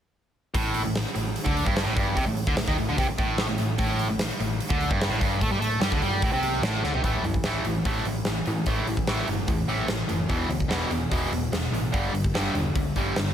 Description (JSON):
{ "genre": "hard rock", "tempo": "148 BPM", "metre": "4/4", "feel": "straight", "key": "A minor", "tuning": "A4 = 437 Hz", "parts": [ { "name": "distorted electric guitar", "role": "riff", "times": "0.5-13.3 s", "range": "E2 to A3", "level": "-26 LUFS", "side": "equal", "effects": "overdrive" }, { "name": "hollow-body short-scale picked electric bass", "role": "bass", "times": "0.5-13.3 s", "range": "E1 to A2", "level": "-30 LUFS", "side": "equal", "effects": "none" }, { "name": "huge arena drum kit", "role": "drums", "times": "0.5-13.3 s", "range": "hi-hat, kick drum, snare drum, toms", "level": "-27 LUFS", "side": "equal", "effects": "none" } ], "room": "studio reverb", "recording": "none", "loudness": "-23 LUFS", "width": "side -9 dB against mid", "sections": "0.5-7.0 A section; 7.0-13.3 B section", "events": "drum fill 6.8", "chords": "0.5 Am; 7.0 A5; 10.3 E5; 11.9 G5" }